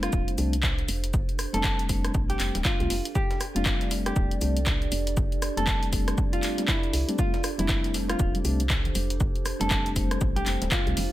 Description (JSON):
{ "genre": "deep house", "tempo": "119 BPM", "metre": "4/4", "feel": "swing 60% on 16ths", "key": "F major", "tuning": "A4 = 439 Hz", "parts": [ { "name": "vintage hollow-body jazz guitar", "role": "melody", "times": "0.0-11.1 s", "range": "E4 to A4", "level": "-33 LUFS", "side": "equal", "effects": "vintage 12-bit sampler grit, tape echo" }, { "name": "warbly tape-like pad", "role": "sustained chords", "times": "0.0-11.1 s", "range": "D4 to D5", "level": "-36 LUFS", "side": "right 4 dB", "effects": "chorus, built-in reverb, sidechain pumping" }, { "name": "mellow tine electric piano", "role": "stabs", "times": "0.0-11.0 s", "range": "G3 to F4", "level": "-32 LUFS", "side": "left 2 dB", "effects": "sidechain pumping, low-pass filter" }, { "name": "woody FM bass", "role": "bass", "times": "0.0-11.1 s", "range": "D1 to C2", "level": "-30 LUFS", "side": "equal", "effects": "tube saturation, sidechain pumping" }, { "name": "punchy analog drum machine", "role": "drums", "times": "0.0-11.1 s", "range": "handclaps, hi-hat, rim click", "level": "-31 LUFS", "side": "left 1 dB", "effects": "none" }, { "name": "breakbeat sampler-style drum kit", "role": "drums", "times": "0.1-11.1 s", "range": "hi-hat, shaker, snare drum", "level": "-39 LUFS", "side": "equal", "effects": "sidechain pumping on perc, high-pass filter on perc, high-pass filter on snare, sidechain pumping on hats, high-pass filter on hats, high-pass filter on room" }, { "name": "electronic kick drum", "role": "drums", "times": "0.1-10.8 s", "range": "none", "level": "-27 LUFS", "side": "equal", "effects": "none" }, { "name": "congas", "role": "percussion", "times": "7.6-11.1 s", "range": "none", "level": "-35 LUFS", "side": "right 2 dB", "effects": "none" } ], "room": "little or no reverb", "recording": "none", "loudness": "-23 LUFS", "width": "side -15 dB against mid", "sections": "0.0-11.1 A section", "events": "none", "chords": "0.0 F69", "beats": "0.13 0.63 | 1.14 1.64 2.15 2.65 | 3.15 3.66 4.16 4.67 | 5.17 5.67 6.18 6.68 | 7.19 7.69 8.20 8.70 | 9.20 9.71 10.21 10.72" }